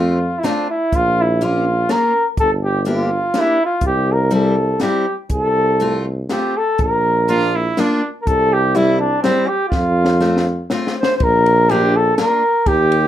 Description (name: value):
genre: alpine folk, alpine dance band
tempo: 123 BPM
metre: 3/4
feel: rubato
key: F major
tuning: A4 = 440 Hz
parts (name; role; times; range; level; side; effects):
- warm flugelhorn; melody; 0.0-13.1 s; C4 to C5; -16 LUFS; equal; none
- picked steel-string acoustic guitar; accompaniment; 0.0-12.4 s; G3 to G4; -21 LUFS; left 2 dB; none
- warm tuba; bass; 0.0-13.1 s; G1 to F2; -18 LUFS; equal; none
- compact cocktail drum kit; drums; 0.4-13.0 s; hi-hat, kick drum, ride cymbal, snare drum; -22 LUFS; equal; none
- bright trumpet; second line; 7.3-8.1 s; D4 to F4; -20 LUFS; right 4 dB; none
room: moderate small room reverb, RT60 0.5 s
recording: rough home demo mix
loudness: -14 LUFS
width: side -11 dB against mid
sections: 0.0-11.2 A section; 11.2-13.1 B section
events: drum fill 9.7-11.2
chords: 0.0 F; 0.9 Bbm; 2.4 Gm; 3.8 C; 5.3 F/C; 6.8 Bb; 8.3 C; 9.7 F; 11.2 Bb